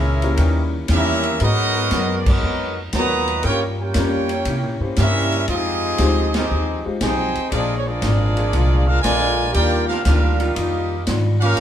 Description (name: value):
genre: jazz, big band swing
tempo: 118 BPM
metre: 4/4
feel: swing 69% on 8ths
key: Eb major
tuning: A4 = 441 Hz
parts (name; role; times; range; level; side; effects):
- clear trumpet section; melody; 0.0-11.6 s; Bb3 to Bb5; -22 LUFS; right 1 dB; none
- dark trombone section; second line; 0.0-11.6 s; Bb2 to Ab4; -26 LUFS; right 2 dB; none
- archtop guitar, miked and amplified; accompaniment; 0.0-11.6 s; Bb2 to Bb4; -28 LUFS; left 4 dB; none
- mellow saxophone section; sustained chords; 0.0-11.0 s; Eb3 to Db5; -29 LUFS; equal; none
- upright bass; bass; 0.0-11.6 s; Ab1 to C3; -20 LUFS; equal; none
- warm grand piano; accompaniment; 0.2-11.6 s; Ab3 to D5; -27 LUFS; left 4 dB; none
- swinging big-band drum kit; drums; 0.2-11.6 s; crash cymbal, hi-hat, kick drum, ride cymbal, snare drum; -26 LUFS; equal; none
room: moderate large studio reverb, RT60 1.1 s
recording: band playing live in one room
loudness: -17 LUFS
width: side -10 dB against mid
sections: 0.0-11.6 A section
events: band accent 2.2, 6.2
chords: 0.4 Eb7b9; 1.4 Abm9; 3.4 Gm7b5; 4.5 C7b9; 5.5 Fm9; 7.5 Bb7; 9.6 Ebmaj9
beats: 0.39 0.90 | 1.41 1.92 2.42 2.93 | 3.44 3.95 4.46 4.97 | 5.48 5.99 6.50 7.01 | 7.52 8.02 8.53 9.04 | 9.55 10.06 10.57 11.07 | 11.58